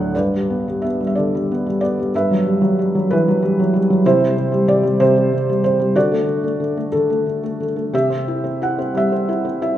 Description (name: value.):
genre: classical, lyrical solo piano.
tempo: 62 BPM (dotted quarters).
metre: 6/8.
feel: uneven beats, rubato.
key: G major.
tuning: A4 = 441 Hz.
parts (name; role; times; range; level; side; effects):
felt-muted upright piano; solo; 0.0-9.8 s; D2 to F#5; -16 LUFS; equal; none.
room: moderate recital hall reverb, RT60 1.5 s.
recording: recorded in a church or concert hall.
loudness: -16 LUFS.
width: side -12 dB against mid.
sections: 0.1-9.8 A section.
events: none.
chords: 0.1 G; 2.1 Emadd9/G; 4.0 C; 5.9 D; 7.9 C.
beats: | 0.14 1.15 | 2.13 3.10 | 4.05 5.00 | 5.95 6.92 | 7.93 8.95.